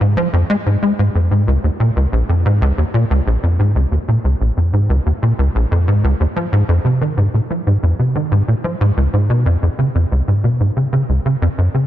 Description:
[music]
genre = ambient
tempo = 92 BPM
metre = 4/4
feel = straight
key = unclear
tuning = A4 = 439 Hz
[part]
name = tight sequencer bass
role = solo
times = 0.0-11.9 s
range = Bb1 to Ab3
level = -13 LUFS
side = equal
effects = ensemble chorus
[sound]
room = light reverb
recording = cassette tape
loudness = -14 LUFS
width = side -13 dB against mid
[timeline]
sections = 0.0-11.6 A section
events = none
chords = none

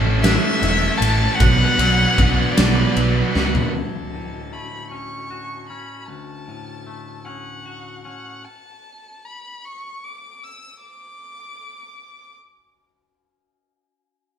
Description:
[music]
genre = post-rock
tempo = 51 BPM (dotted quarters)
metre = 6/8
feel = straight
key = D major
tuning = A4 = 437 Hz
[part]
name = crunchy overdriven guitar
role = riff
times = 0.0-3.7 s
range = A2 to B4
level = -23 LUFS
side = right 6 dB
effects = none
[part]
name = distorted electric guitar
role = riff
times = 0.0-3.7 s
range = B2 to B4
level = -26 LUFS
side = left 6 dB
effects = distortion
[part]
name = growling picked electric bass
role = bass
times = 0.0-3.6 s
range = E1 to C#2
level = -20 LUFS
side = right 1 dB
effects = overdrive
[part]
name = dark violin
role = melody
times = 0.2-12.4 s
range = D5 to E6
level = -26 LUFS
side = left 3 dB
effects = none
[part]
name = glockenspiel with soft plastic mallets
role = arpeggios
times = 0.2-3.7 s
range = D6 to F#6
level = -32 LUFS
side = right 7 dB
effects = none
[part]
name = big rock drum kit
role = drums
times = 0.2-3.7 s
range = kick drum, ride cymbal, snare drum, toms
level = -20 LUFS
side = equal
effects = none
[part]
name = twangy electric guitar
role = arpeggios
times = 3.7-8.4 s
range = D2 to F#4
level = -36 LUFS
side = left 3 dB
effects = none
[sound]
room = moderate stone room reverb, RT60 1.1 s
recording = band playing live in one room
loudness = -15 LUFS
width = side -8 dB against mid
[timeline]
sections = 0.0-3.7 A section; 3.7-13.2 B section; 13.2-14.4 C section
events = drum fill 3.4-3.7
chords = 0.0 A; 1.4 Bm; 3.7 Dmaj7; 8.4 N.C.

